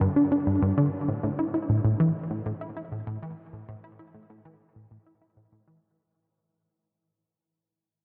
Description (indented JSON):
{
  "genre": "ambient",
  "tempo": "98 BPM",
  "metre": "4/4",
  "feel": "straight",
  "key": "unclear",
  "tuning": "A4 = 437 Hz",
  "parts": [
    { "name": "tight sequenced synth", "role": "solo", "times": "0.0-5.8 s", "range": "G2 to E4", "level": "-27 LUFS", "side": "equal", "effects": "chorus, delay" }
  ],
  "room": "wet huge ambient reverb, RT60 7.1 s",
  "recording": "dark, warm production",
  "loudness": "-27 LUFS",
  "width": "mono",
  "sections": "0.0-6.0 A section",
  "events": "fade-out 0.0-6.0",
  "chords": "none"
}